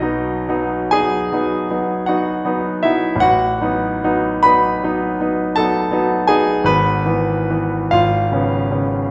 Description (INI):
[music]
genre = classical, romantic nocturne for solo piano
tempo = 43-56 BPM (dotted quarters)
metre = 9/8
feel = rubato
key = B major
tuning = A4 = 440 Hz
[part]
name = clear concert grand piano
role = solo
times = 0.0-9.1 s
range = G#1 to B5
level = -18 LUFS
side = equal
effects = none
[sound]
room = wet recital hall reverb, RT60 1.3 s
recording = none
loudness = -17 LUFS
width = mono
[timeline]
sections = 0.0-9.1 A section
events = none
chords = 0.0 B; 3.2 B7/A; 6.6 E/G#; 7.9 C#7/G#